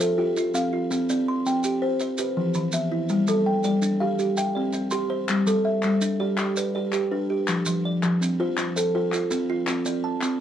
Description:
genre	southern african traditional, mbira-style interlocking cycle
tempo	110 BPM (dotted quarters)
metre	12/8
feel	straight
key	G mixolydian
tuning	A4 = 441 Hz
part	buzzing kalimba	arpeggios	0.0-10.4 s	E3 to E5	-24 LUFS	left 1 dB	none
part	kalimba	arpeggios	0.0-10.4 s	E3 to C6	-27 LUFS	right 2 dB	none
part	maracas	percussion	0.0-10.4 s	none	-34 LUFS	right 3 dB	none
part	group handclap	percussion	5.3-10.4 s	none	-30 LUFS	left 4 dB	none
room	moderate studio reverb, RT60 0.5 s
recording	worn, warbling old tape, cassette tape, warbly pitch drift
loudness	-22 LUFS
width	side -10 dB against mid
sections	0.0-5.3 A section; 5.3-10.4 B section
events	none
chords	0.0 F; 0.9 C5; 2.0 Em; 3.1 G5; 4.2 C; 5.3 G; 7.5 F; 9.7 C5

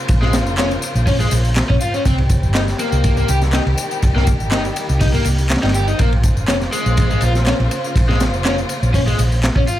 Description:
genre	breakbeat, breaks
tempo	122 BPM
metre	4/4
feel	swing 54% on 16ths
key	Bb dorian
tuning	A4 = 440 Hz
part	warm symphonic string section	sustained chords	0.0-9.8 s	Db3 to C5	-25 LUFS	left 1 dB	sidechain pumping
part	hollow-body short-scale fingered electric bass	bass	0.1-9.6 s	F1 to C2	-18 LUFS	equal	none
part	crunchy breakbeat drum kit	drums	0.1-9.8 s	hi-hat, kick drum, ride cymbal, snare drum	-19 LUFS	equal	none
part	electronic tambourine and handclaps	drums	0.1-9.8 s	none	-28 LUFS	left 2 dB	overdrive
part	overdriven electric guitar	riff	0.2-9.8 s	Ab3 to G4	-22 LUFS	left 2 dB	tape echo
room	studio ambience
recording	none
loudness	-14 LUFS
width	side -13 dB against mid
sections	0.0-9.8 A section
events	none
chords	0.0 Bbmadd9; 2.1 Cm; 6.0 Bbmadd9

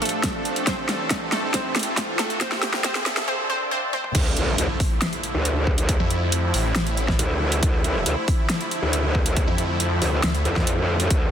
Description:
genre	heavy wobble dubstep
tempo	138 BPM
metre	4/4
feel	half-time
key	D minor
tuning	A4 = 440 Hz
part	wide unison pluck	melody	0.0-4.1 s	A3 to C5	-28 LUFS	equal	dub echo
part	supersaw pad	sustained chords	0.0-11.3 s	D3 to A4	-29 LUFS	right 1 dB	sidechain pumping
part	big-room dance drum kit	drums	0.0-11.2 s	crash cymbal, hi-hat, snare drum, toms	-26 LUFS	equal	overdrive
part	riser, swell and impact	sound effects	0.0-5.9 s	none	-31 LUFS	right 1 dB	none
part	deep dark ambient pad	texture	0.0-11.3 s	A3 to F5	-33 LUFS	left 1 dB	chorus, built-in reverb, sidechain pumping
part	electronic kick drum	drums	0.2-11.2 s	none	-23 LUFS	equal	overdrive
part	growl bass	bass	4.1-11.3 s	D2 to F2	-22 LUFS	equal	distortion, chorus, overdrive
part	snarling distorted saw bass	bass	6.0-10.4 s	A1 to F2	-24 LUFS	equal	distortion, overdrive
room	light reverb, digital ambience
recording	dense, heavily limited modern master, high-pass filter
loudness	-20 LUFS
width	side -9 dB against mid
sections	0.0-4.1 A section; 4.1-11.3 B section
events	build-up 0.0-4.1; drum fill 0.0-3.3, 3.9; riser 0.0-3.3; swell 3.3-4.1; drop 4.1-11.3; impact 4.1-5.9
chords	0.0 Dm; 0.7 Am; 2.4 Gm; 4.1 Dmadd9

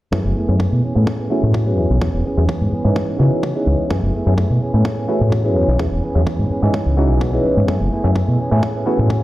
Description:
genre	filtered disco house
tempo	127 BPM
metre	4/4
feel	straight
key	F# dorian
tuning	A4 = 438 Hz
part	auto-wah clav	accompaniment	0.1-9.2 s	E3 to G#4	-21 LUFS	equal	phaser, sidechain pumping, low-pass filter
part	direct-recorded clean electric guitar	riff	0.1-9.2 s	E3 to G#4	-24 LUFS	right 1 dB	sidechain pumping, low-pass filter
part	growling fingered electric bass	bass	0.1-9.2 s	E1 to C#3	-16 LUFS	equal	overdrive, sidechain pumping, low-pass filter
part	electronic kick drum	drums	0.1-9.2 s	none	-24 LUFS	equal	high-pass filter on kick
part	tambourine	percussion	0.1-9.2 s	none	-73 LUFS	left 5 dB	none
room	light reverb, digital ambience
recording	played on a big sound system in a bare room, stone room reverb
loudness	-15 LUFS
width	side -16 dB against mid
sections	0.1-9.2 A section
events	filter sweep 0.1-9.2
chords	0.1 F#m11; 0.8 Amaj9; 1.8 E6; 3.0 C#m7; 3.9 F#m11; 4.6 Amaj9; 5.6 E6; 6.7 C#m7; 7.7 F#m11; 8.4 Amaj9

